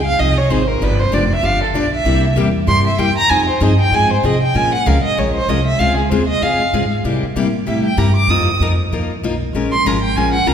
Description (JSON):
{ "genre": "acoustic string swing (jazz manouche)", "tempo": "193 BPM", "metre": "4/4", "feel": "swing 58% on 8ths", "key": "Bb minor from 4.5 s", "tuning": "A4 = 440 Hz", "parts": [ { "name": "warm violin", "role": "melody", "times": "0.0-10.5 s", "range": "Ab4 to Eb6", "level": "-17 LUFS", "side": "right 2 dB", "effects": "none" }, { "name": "upright bass", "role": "bass", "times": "0.0-10.5 s", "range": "F1 to C3", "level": "-18 LUFS", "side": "equal", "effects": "none" }, { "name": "picked steel-string acoustic guitar", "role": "accompaniment", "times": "0.2-10.5 s", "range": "C3 to Bb4", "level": "-19 LUFS", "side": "left 3 dB", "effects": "none" } ], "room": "wet concert hall reverb, RT60 2.4 s", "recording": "recorded in a church or concert hall", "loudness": "-13 LUFS", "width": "side -8 dB against mid", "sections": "0.0-4.5 A section; 4.5-10.5 A section", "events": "violin solo 0.0-10.5", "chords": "0.0 Fm7; 0.8 G7; 2.1 C7; 3.3 Fm7; 4.5 Bbm7; 5.8 Dbmaj9; 7.0 C7; 8.3 F7sus4; 9.5 Bbm7" }